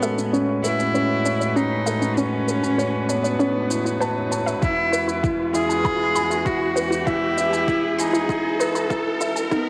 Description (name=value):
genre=piano and strings electronica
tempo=98 BPM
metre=4/4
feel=straight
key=E major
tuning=A4 = 444 Hz
part: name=rich cello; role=melody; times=0.0-9.7 s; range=B3 to G#4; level=-27 LUFS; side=equal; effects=none
part: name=rich string quartet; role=sustained chords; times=0.0-9.7 s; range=E2 to B4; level=-29 LUFS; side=equal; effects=sidechain pumping, low-pass filter
part: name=unison pluck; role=arpeggios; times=0.0-9.6 s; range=C#4 to B5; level=-32 LUFS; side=equal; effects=none
part: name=dark baby grand piano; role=riff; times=0.0-9.7 s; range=C#4 to B5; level=-27 LUFS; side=equal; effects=none
part: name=shaker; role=drums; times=0.0-9.6 s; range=none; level=-36 LUFS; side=equal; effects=small room ambience
part: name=riser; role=sound effects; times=1.8-9.7 s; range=none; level=-33 LUFS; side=equal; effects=none
part: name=electronic kick drum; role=drums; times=4.6-9.6 s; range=none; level=-28 LUFS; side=equal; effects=overdrive, small room ambience
room=moderate lush hall reverb, RT60 1.9 s, studio reverb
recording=dark, warm production, high-pass filter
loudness=-22 LUFS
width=mono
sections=0.0-9.7 A section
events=build-up 0.0-9.7; filter sweep on string quartet 0.0-9.7; riser 1.8-9.7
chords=0.0 Aadd9; 4.6 E